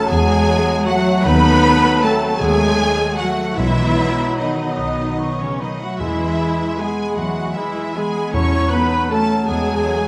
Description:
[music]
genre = classical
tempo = 139-171 BPM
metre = 3/4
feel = rubato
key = E major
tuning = A4 = 440 Hz
[part]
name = rich studio violin section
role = melody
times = 0.0-10.1 s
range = C#5 to C#6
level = -28 LUFS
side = equal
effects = none
[part]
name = rich studio violin section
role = second line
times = 0.0-10.1 s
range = C#5 to C#6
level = -31 LUFS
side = equal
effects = none
[part]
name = silver concert flute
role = second line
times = 0.0-10.0 s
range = A5 to D#6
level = -34 LUFS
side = equal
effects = none
[part]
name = warm clarinet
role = second line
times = 0.0-10.0 s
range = E3 to E4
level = -29 LUFS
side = equal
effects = none
[part]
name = rich studio viola section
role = accompaniment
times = 0.0-10.1 s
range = C#4 to C#5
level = -24 LUFS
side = equal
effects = none
[part]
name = warm bassoon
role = accompaniment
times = 0.0-10.1 s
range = F#3 to G#3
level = -28 LUFS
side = equal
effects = none
[part]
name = mellow French horn section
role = sustained chords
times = 0.0-10.1 s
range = C#3 to C#4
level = -27 LUFS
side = equal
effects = none
[part]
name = concert harp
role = arpeggios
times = 0.0-10.1 s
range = B2 to G#5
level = -30 LUFS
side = equal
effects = none
[part]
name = rich studio cello section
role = bass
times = 0.0-10.1 s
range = C#3 to C#4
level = -26 LUFS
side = equal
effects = none
[part]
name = warm studio double bass section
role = bass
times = 0.1-9.8 s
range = B1 to E2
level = -26 LUFS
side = equal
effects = none
[part]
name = bright trombone section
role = sustained chords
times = 0.5-10.0 s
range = E3 to B3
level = -31 LUFS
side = equal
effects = none
[part]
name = timpani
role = percussion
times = 3.6-8.9 s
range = E2 to B2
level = -30 LUFS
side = equal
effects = none
[sound]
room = wet scoring stage reverb, RT60 1.6 s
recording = dark, warm production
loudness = -17 LUFS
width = mono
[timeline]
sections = 0.0-10.1 A section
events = none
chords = 0.0 F#m7/E; 1.2 D#dim7; 3.6 B; 6.0 E; 8.3 F#m7/E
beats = | 0.10 0.47 0.86 | 1.25 1.63 2.02 | 2.40 2.77 3.17 | 3.57 3.98 4.39 | 4.79 5.19 5.61 | 6.00 6.39 6.79 | 7.17 7.55 7.96 | 8.33 8.71 9.10 | 9.47 9.84

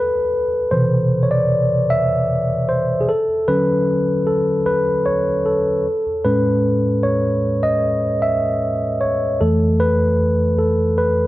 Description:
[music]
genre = R&B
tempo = 76 BPM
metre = 4/4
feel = straight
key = unclear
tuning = A4 = 440 Hz
[part]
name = mellow tine electric piano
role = solo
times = 0.0-11.3 s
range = F2 to E5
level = -16 LUFS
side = equal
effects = none
[sound]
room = light reverb, digital ambience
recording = dark, warm production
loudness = -16 LUFS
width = side -16 dB against mid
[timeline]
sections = 0.0-11.3 A section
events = tine electric piano solo 0.0-11.3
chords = 0.0 Cmaj7; 3.1 Dmaj7; 5.9 Amaj9; 9.4 Fmaj7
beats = 0.72 1.51 2.30 | 3.09 3.88 4.67 5.46 | 6.25 7.04 7.83 8.62 | 9.41 10.20 10.99

